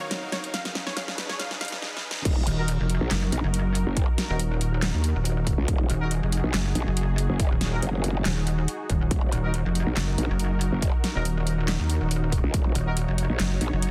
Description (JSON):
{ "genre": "heavy wobble dubstep", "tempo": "140 BPM", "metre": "4/4", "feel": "swing 53% on 16ths, half-time", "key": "Eb minor", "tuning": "A4 = 440 Hz", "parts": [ { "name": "unison pluck", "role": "melody", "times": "0.0-1.8 s", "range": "Db5 to F5", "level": "-38 LUFS", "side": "equal", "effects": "digital delay" }, { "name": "supersaw pad", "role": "sustained chords", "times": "0.0-13.9 s", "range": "Eb3 to F5", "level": "-38 LUFS", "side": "equal", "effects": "sidechain pumping, low-pass filter" }, { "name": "riser", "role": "sound effects", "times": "0.0-1.8 s", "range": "none", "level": "-44 LUFS", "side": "equal", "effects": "none" }, { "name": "dubstep drum kit", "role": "drums", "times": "0.1-13.9 s", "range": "crash cymbal, handclaps, hi-hat, snare drum", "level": "-33 LUFS", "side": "equal", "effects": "none" }, { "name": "growl bass", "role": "bass", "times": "2.3-13.7 s", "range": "Eb1 to Db2", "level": "-29 LUFS", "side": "equal", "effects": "chorus, overdrive" }, { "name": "electronic kick drum", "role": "drums", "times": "2.3-12.6 s", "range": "none", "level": "-26 LUFS", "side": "equal", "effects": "overdrive" }, { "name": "pulsing pluck wobble bass", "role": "bass", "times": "2.5-13.9 s", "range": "Eb1 to Eb2", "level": "-27 LUFS", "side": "equal", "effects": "chorus, overdrive" }, { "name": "mellow brass ensemble", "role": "stabs", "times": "2.6-13.0 s", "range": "Eb4 to Bb4", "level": "-38 LUFS", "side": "equal", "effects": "digital delay" } ], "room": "digital ambience", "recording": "dense, heavily limited modern master, high-pass filter", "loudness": "-26 LUFS", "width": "mono", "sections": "0.0-2.3 A section; 2.3-13.9 B section", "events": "build-up 0.0-2.3; drum fill 0.0-1.8, 1.8-2.3; filter sweep 0.0-2.3; drop 2.3-13.9", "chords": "0.0 Ebmadd9; 0.5 Abm; 2.3 Ebm" }